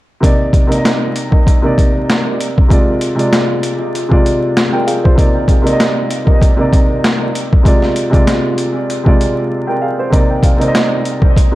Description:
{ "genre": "hip hop, boom-bap hip-hop", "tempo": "97 BPM", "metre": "4/4", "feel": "swing 54% on 16ths", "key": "C minor", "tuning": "A4 = 440 Hz", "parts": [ { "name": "dark baby grand piano", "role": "accompaniment", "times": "0.2-11.6 s", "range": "C3 to G5", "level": "-14 LUFS", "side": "equal", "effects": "cassette tape, high-pass filter, low-pass filter, tape echo" }, { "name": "boom bap sampler-style drum kit", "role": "drums", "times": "0.2-11.5 s", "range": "hi-hat, kick drum, snare drum", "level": "-12 LUFS", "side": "equal", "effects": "overdrive, vintage 12-bit sampler grit" } ], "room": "light reverb", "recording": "echo-heavy mix, vinyl crackle", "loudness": "-10 LUFS", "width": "side -17 dB against mid", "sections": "0.2-10.1 A section; 10.1-11.6 B section", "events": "break 9.5-10.1", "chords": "0.2 Cm9; 2.7 Bb13/C; 5.2 Cm9; 7.7 Bb13/C; 10.1 Cm9" }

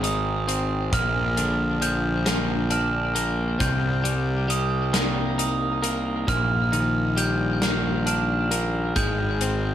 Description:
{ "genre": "post-rock", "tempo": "45 BPM (dotted quarters)", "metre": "6/8", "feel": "straight", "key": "C minor", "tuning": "A4 = 440 Hz", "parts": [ { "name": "glockenspiel with soft plastic mallets", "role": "arpeggios", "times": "0.0-9.7 s", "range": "Eb6 to G6", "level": "-28 LUFS", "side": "right 4 dB", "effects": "digital delay" }, { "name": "twelve-string electric guitar", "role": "arpeggios", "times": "0.0-9.7 s", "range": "Bb2 to Eb4", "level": "-27 LUFS", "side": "left 2 dB", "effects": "digital delay" }, { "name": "fuzz picked electric bass", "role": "bass", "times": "0.0-9.7 s", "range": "Ab1 to C2", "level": "-25 LUFS", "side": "equal", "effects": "overdrive" }, { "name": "big rock drum kit", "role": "drums", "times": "0.0-9.6 s", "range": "hi-hat, kick drum, snare drum", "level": "-28 LUFS", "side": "left 1 dB", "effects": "none" } ], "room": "moderate large studio reverb, RT60 1.1 s, studio ambience", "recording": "none", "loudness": "-21 LUFS", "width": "side -10 dB against mid", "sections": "0.0-9.7 A section", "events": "none", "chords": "0.0 Ab; 0.9 Bb; 3.6 Cm7; 6.3 Ebmaj7/Bb; 9.0 Abmaj7" }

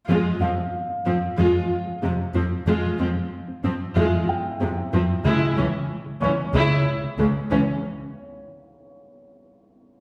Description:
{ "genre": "cinematic", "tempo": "93 BPM", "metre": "4/4", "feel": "straight", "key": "F harmonic minor", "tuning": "A4 = 445 Hz", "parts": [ { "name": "warm symphonic viola section", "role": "accompaniment", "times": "0.1-7.6 s", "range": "C3 to F4", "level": "-27 LUFS", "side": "equal", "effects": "none" }, { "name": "tight sequenced synth", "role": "arpeggios", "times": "0.1-7.7 s", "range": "Db3 to F4", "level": "-30 LUFS", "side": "equal", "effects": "chorus, phaser, digital delay" }, { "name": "warm symphonic cello section", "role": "bass", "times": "0.1-7.6 s", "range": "Db2 to F2", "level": "-27 LUFS", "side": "equal", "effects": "none" }, { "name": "dark grand piano", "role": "texture", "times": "0.4-10.0 s", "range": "E4 to Db6", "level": "-33 LUFS", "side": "equal", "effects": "digital delay" } ], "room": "wet scoring stage reverb, RT60 1.6 s", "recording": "heard from further back in the room", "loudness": "-23 LUFS", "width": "mono", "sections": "0.1-10.0 A section", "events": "break 7.8-10.0", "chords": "0.1 Fm; 5.3 Dbm" }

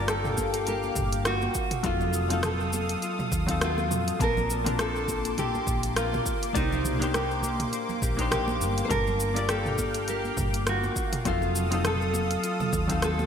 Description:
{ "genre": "sunset chillout", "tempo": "102 BPM", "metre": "4/4", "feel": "swing 57% on 16ths", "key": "unclear", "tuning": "A4 = 439 Hz", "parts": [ { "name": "nylon-string guitar", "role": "melody", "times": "0.0-13.3 s", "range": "Eb4 to C5", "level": "-31 LUFS", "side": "equal", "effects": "digital delay" }, { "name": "hollow-body jazz guitar", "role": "accompaniment", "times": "0.0-13.3 s", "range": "Gb3 to A5", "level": "-33 LUFS", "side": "left 1 dB", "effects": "auto-pan" }, { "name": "lush unison pad", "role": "sustained chords", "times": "0.0-13.3 s", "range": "Bb3 to Eb6", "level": "-34 LUFS", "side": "equal", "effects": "chorus, phaser" }, { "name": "concert harp", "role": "arpeggios", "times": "0.0-13.3 s", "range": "F4 to C5", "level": "-37 LUFS", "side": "left 2 dB", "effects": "digital delay" }, { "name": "hollow-body short-scale fingered electric bass", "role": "bass", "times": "0.0-13.3 s", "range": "F1 to F2", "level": "-31 LUFS", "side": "equal", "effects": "none" }, { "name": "deep house drum kit", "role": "drums", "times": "0.1-13.3 s", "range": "hi-hat, rim click, shaker, toms", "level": "-32 LUFS", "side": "equal", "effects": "gated reverb" }, { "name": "electronic kick drum", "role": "drums", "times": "0.4-13.0 s", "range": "none", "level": "-32 LUFS", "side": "equal", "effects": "none" }, { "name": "congas", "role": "percussion", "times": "0.4-13.3 s", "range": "none", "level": "-40 LUFS", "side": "right 2 dB", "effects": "none" } ], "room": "moderate lush hall reverb, RT60 2.5 s", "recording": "bright 1980s-style digital production", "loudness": "-24 LUFS", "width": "side -8 dB against mid", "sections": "0.0-13.3 A section", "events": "none", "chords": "0.0 Gm7; 1.6 F7b9; 4.2 Bbmaj9; 6.3 Cm9; 8.9 Gm7; 11.0 F7b9" }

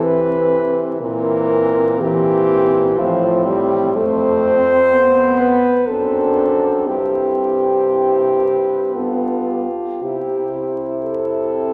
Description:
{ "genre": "classical, lyrical piece for horn quartet", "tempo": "56-63 BPM", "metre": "3/4", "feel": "rubato", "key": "C major", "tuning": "A4 = 440 Hz", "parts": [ { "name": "mellow French horn", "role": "melody", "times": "0.0-11.7 s", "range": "F4 to C5", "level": "-19 LUFS", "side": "equal", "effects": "none" }, { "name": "warm French horn", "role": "second line", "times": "0.0-11.7 s", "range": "C4 to B4", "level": "-29 LUFS", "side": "equal", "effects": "none" }, { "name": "mellow French horn", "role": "accompaniment", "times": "0.0-11.7 s", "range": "E3 to C4", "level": "-22 LUFS", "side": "equal", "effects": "none" }, { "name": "clear French horn", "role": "bass", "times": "0.0-11.7 s", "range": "F2 to C3", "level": "-27 LUFS", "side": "equal", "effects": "none" } ], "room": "wet church reverb, RT60 2.6 s", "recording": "vinyl crackle", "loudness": "-17 LUFS", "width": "mono", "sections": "0.0-11.7 A section", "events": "none", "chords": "0.0 C; 1.0 C7/Bb; 3.0 F/A; 3.9 F; 5.9 D7/F#; 6.9 C/G; 8.9 G; 10.0 C" }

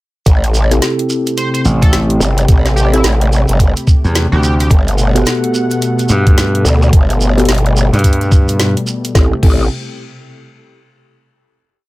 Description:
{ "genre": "glitch hop", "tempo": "108 BPM", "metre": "4/4", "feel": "swing 62% on 16ths", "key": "A dorian", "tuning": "A4 = 440 Hz", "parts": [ { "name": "warm analog pad", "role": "sustained chords", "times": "0.3-9.4 s", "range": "B2 to F#5", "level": "-19 LUFS", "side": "left 1 dB", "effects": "chorus, vintage 12-bit sampler grit, sidechain pumping" }, { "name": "growl bass", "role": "bass", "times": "0.3-9.7 s", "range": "G1 to D2", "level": "-12 LUFS", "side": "equal", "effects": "chorus, tube saturation" }, { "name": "drum and bass drum kit", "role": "drums", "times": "0.3-9.6 s", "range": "crash cymbal, hi-hat, rim click, snare drum", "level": "-20 LUFS", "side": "equal", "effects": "none" }, { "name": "electronic kick drum", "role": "drums", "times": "0.3-9.6 s", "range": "none", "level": "-9 LUFS", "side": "equal", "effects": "none" }, { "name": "shekere", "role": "percussion", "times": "0.3-9.1 s", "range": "none", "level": "-25 LUFS", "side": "right 3 dB", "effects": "none" }, { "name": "mellow tine electric piano", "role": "stabs", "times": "0.7-9.6 s", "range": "B3 to A4", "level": "-18 LUFS", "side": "equal", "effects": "slow stereo tremolo, sidechain pumping, dub echo" }, { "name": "sync lead", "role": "melody", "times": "1.4-4.7 s", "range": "E4 to C5", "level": "-24 LUFS", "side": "right 1 dB", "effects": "chorus, dub echo" }, { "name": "gritty slap bass", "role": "bass", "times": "1.6-8.7 s", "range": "A1 to G2", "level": "-13 LUFS", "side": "equal", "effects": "overdrive" } ], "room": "little or no reverb", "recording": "none", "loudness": "-10 LUFS", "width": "side -19 dB against mid", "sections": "0.3-9.1 drop; 9.1-11.4 final chord", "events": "drop 0.3-9.1", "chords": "0.3 Am7; 4.7 Gmaj9; 9.1 Am7" }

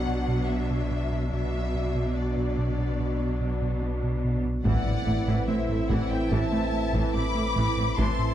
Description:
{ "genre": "cinematic, hybrid orchestral and electronic film score", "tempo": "72 BPM", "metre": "4/4", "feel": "straight", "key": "A dorian", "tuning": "A4 = 440 Hz", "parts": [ { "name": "warm symphonic violin section", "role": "melody", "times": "0.0-8.3 s", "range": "D5 to D6", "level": "-35 LUFS", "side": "left 4 dB", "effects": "none" }, { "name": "rich symphonic viola section", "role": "accompaniment", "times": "0.0-8.3 s", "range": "E3 to E4", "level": "-33 LUFS", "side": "right 1 dB", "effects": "none" }, { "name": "pure sine sub bass", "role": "bass", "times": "0.0-8.3 s", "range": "A1 to B1", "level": "-31 LUFS", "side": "left 1 dB", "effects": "none" }, { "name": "rich symphonic cello section", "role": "bass", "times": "0.0-8.1 s", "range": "A2 to B2", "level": "-32 LUFS", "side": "right 2 dB", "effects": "none" }, { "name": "round analog bass", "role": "riff", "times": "0.1-8.3 s", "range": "A2 to B3", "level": "-30 LUFS", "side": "right 1 dB", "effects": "none" }, { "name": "mellow trombone section", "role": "sustained chords", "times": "4.6-8.3 s", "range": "A2 to E3", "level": "-35 LUFS", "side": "right 6 dB", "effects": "none" }, { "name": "warm symphonic violin section", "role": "second line", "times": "4.7-8.3 s", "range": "C5 to B5", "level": "-34 LUFS", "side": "left 3 dB", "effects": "none" }, { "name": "dark French horn section", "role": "sustained chords", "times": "4.7-8.3 s", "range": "C4 to E4", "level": "-33 LUFS", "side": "left 2 dB", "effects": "none" }, { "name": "rich studio double bass section", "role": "bass", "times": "4.7-8.1 s", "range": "A1", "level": "-34 LUFS", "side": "right 2 dB", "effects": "none" }, { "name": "taiko ensemble", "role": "drums", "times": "4.7-8.3 s", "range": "none", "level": "-33 LUFS", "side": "left 1 dB", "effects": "none" }, { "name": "impact", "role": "sound effects", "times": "4.7-8.0 s", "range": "none", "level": "-34 LUFS", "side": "left 1 dB", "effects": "none" } ], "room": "moderate scoring stage reverb, RT60 1.7 s", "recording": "dark, warm production", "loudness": "-24 LUFS", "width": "side -11 dB against mid", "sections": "0.0-4.7 A section; 4.7-8.3 B section", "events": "impact 4.7-8.0", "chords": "0.0 Bm; 4.7 Am" }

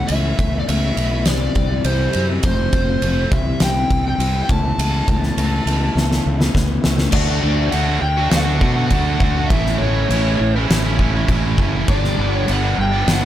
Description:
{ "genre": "quiet-loud alternative rock", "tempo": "102 BPM", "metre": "4/4", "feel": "straight", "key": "D major", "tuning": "A4 = 440 Hz", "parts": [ { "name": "lead guitar through a small cranked amp", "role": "melody", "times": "0.0-13.2 s", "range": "C5 to A5", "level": "-24 LUFS", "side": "left 1 dB", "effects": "overdrive, slapback echo" }, { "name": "fingerpicked steel-string acoustic guitar", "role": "arpeggios", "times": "0.0-7.1 s", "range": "F2 to F4", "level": "-23 LUFS", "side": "left 4 dB", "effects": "none" }, { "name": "fuzz fingered electric bass", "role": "bass", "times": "0.0-13.2 s", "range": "F1 to B2", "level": "-20 LUFS", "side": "equal", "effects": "overdrive" }, { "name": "oversized low-tuned drum kit", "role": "drums", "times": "0.1-13.2 s", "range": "crash cymbal, kick drum, ride cymbal, snare drum", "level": "-20 LUFS", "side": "equal", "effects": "none" }, { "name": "crunchy overdriven guitar", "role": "riff", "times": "7.1-13.2 s", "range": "G2 to F#4", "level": "-21 LUFS", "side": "right 2 dB", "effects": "none" } ], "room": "little or no reverb", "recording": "none", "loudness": "-15 LUFS", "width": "side -12 dB against mid", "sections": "0.0-7.1 A section; 7.1-13.2 B section", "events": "drum fill 6.0-7.1", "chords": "0.0 Aadd9/C#; 1.3 C; 2.4 F; 3.3 C; 4.5 Aadd9/C#; 7.1 D; 9.5 A; 11.9 G" }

